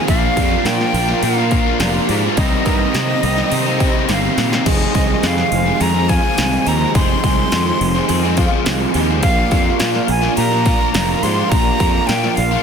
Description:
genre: rock, shoegaze and dream pop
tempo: 105 BPM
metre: 4/4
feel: straight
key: unclear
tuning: A4 = 440 Hz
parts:
  - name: breathy bright jazz flute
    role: melody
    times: 0.0-12.6 s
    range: Eb5 to C6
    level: -21 LUFS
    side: right 1 dB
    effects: slapback echo
  - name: hollow soft pad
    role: sustained chords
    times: 0.0-12.6 s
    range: F4 to Bb5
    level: -29 LUFS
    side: right 1 dB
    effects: none
  - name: picked twelve-string acoustic guitar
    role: arpeggios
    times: 0.0-12.6 s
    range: F4 to C5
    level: -27 LUFS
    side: left 2 dB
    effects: ensemble chorus, slapback echo
  - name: distorted electric guitar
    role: riff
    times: 0.0-4.7 s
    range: Bb2 to Eb4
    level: -22 LUFS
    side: left 1 dB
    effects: overdrive
  - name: electric guitar through a small old amp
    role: riff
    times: 0.0-12.6 s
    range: F2 to Ab4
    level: -22 LUFS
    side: right 14 dB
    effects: reverse reverb
  - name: raw garage guitar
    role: riff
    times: 0.0-12.6 s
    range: F2 to Eb4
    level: -22 LUFS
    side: left 14 dB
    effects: overdrive, analog chorus
  - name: fuzz fingered electric bass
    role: bass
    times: 0.1-12.6 s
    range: F1 to C3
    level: -20 LUFS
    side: equal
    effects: overdrive
  - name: big-room dance drum kit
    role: drums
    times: 0.1-12.5 s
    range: crash cymbal, hi-hat, kick drum, snare drum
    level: -20 LUFS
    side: equal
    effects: none
room: little or no reverb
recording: dense, heavily limited modern master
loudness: -13 LUFS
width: side -6 dB against mid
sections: 0.0-4.7 A section; 4.7-12.6 A section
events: drum fill 4.1-4.7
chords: 0.1 Bb; 2.4 Cm7; 4.7 Fm7; 9.2 Bb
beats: | 0.08 0.66 1.23 1.80 | 2.38 2.95 3.52 4.09 | 4.67 5.24 5.81 6.38 | 6.95 7.52 8.09 8.66 | 9.24 9.81 10.38 10.95 | 11.52 12.09

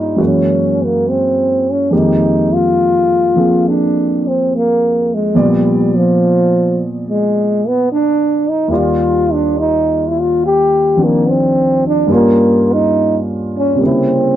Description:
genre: jazz ballad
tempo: 70 BPM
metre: 4/4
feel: swing 68% on 8ths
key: Eb major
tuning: A4 = 444 Hz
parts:
  - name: breathy trombone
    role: melody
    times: 0.0-14.4 s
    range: F3 to G4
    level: -13 LUFS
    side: equal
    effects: none
  - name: dark concert grand piano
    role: accompaniment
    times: 0.0-14.4 s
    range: Eb2 to D5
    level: -15 LUFS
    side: equal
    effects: none
room: light reverb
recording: dry, close 1970s-style studio recording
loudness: -11 LUFS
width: side -11 dB against mid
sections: 0.0-14.4 A section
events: none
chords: 0.2 Gb9; 1.9 Fm11; 5.3 Bb; 8.7 Ebmaj9; 12.1 Gm7b5; 13.8 C7b9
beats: 0.19 1.06 | 1.92 2.78 3.64 4.49 | 5.33 6.18 7.02 7.86 | 8.70 9.54 10.39 11.24 | 12.10 12.95 13.80

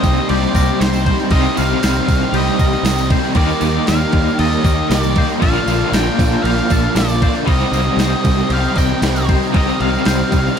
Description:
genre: rock, shoegaze and dream pop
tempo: 117 BPM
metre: 4/4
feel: straight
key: unclear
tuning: A4 = 440 Hz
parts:
  - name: octave-fuzz lead guitar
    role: melody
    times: 0.0-10.6 s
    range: C5 to G5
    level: -23 LUFS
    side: equal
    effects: distortion, analog delay
  - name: dark analog pad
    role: sustained chords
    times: 0.0-10.6 s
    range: Bb3 to Eb6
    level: -28 LUFS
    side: equal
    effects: lush chorus
  - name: twangy electric guitar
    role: arpeggios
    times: 0.0-10.6 s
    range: G4 to D5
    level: -28 LUFS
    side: left 9 dB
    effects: analog chorus, analog delay
  - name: crunchy overdriven guitar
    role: riff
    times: 0.0-10.6 s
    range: Bb2 to Eb4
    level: -21 LUFS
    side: equal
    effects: tremolo
  - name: overdriven electric guitar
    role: riff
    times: 0.0-10.6 s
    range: Bb2 to G4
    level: -22 LUFS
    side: left 11 dB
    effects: ensemble chorus
  - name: overdriven electric guitar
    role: riff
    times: 0.0-10.6 s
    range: Bb2 to Eb4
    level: -22 LUFS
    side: right 12 dB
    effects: reverse reverb
  - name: picked electric bass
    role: bass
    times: 0.0-10.5 s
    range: Bb1 to Eb2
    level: -20 LUFS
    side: equal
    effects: none
  - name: crisp 8-bit digital drum machine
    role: drums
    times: 0.0-10.6 s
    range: crash cymbal, kick drum, snare drum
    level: -18 LUFS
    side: equal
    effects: none
  - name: tambourine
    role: percussion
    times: 0.0-10.5 s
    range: none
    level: -36 LUFS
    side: right 14 dB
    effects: none
room: little or no reverb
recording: none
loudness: -13 LUFS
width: side -7 dB against mid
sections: 0.0-10.6 A section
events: none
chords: 0.0 Cm7; 3.4 Ebmaj7; 5.4 Bbmaj7; 7.5 Cm7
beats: 0.29 0.80 | 1.31 1.82 2.34 2.85 | 3.36 3.88 4.39 4.90 | 5.42 5.93 6.45 6.96 | 7.48 7.99 8.51 9.03 | 9.54 10.06 10.58

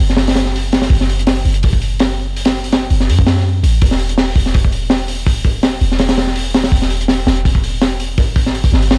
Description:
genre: drum and bass, jungle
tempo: 165 BPM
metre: 4/4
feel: swing 54% on 16ths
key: E minor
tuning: A4 = 440 Hz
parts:
  - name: warm 808-style bass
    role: bass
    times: 0.0-9.0 s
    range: E1 to F#2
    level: -16 LUFS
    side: equal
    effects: none
  - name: crunchy breakbeat drum kit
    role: drums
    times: 0.0-9.0 s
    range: hi-hat, kick drum, snare drum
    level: -13 LUFS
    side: equal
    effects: none
room: little or no reverb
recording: dry, gritty hardware recording, vinyl crackle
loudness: -12 LUFS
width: side -32 dB against mid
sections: 0.0-9.0 A section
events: none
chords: none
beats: 0.18 0.54 | 0.91 1.27 1.63 2.00 | 2.36 2.72 3.09 3.45 | 3.81 4.18 4.54 4.91 | 5.27 5.63 6.00 6.36 | 6.72 7.09 7.45 7.82 | 8.18 8.54 8.91

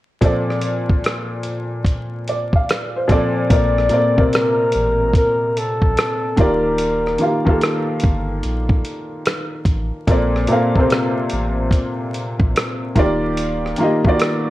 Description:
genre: lo-fi hip hop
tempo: 73 BPM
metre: 4/4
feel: swing 64% on 16ths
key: Bb major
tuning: A4 = 440 Hz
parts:
  - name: felt-muted upright piano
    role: accompaniment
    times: 0.2-14.5 s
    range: Bb2 to F5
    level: -19 LUFS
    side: equal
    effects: none
  - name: dusty soul sampler-style drum kit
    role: drums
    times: 0.2-14.4 s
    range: hi-hat, kick drum, rim click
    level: -18 LUFS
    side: equal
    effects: none
  - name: breathy flugelhorn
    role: melody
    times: 3.5-7.6 s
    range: A4 to D5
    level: -19 LUFS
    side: left 1 dB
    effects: none
  - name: warm sub bass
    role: bass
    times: 3.5-13.7 s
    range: Eb1 to Bb1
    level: -23 LUFS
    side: equal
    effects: none
room: moderate small room reverb, RT60 0.6 s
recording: vinyl crackle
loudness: -16 LUFS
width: side -16 dB against mid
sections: 0.2-3.5 A section; 3.5-14.5 B section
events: none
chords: 0.2 Bbmaj9; 6.4 Ebmaj9; 10.1 Bbmaj9; 13.0 Ebmaj9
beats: | 0.22 1.04 1.86 2.68 | 3.51 4.33 5.15 5.97 | 6.79 7.62 8.44 9.26 | 10.08 10.90 11.72 12.55 | 13.37 14.19

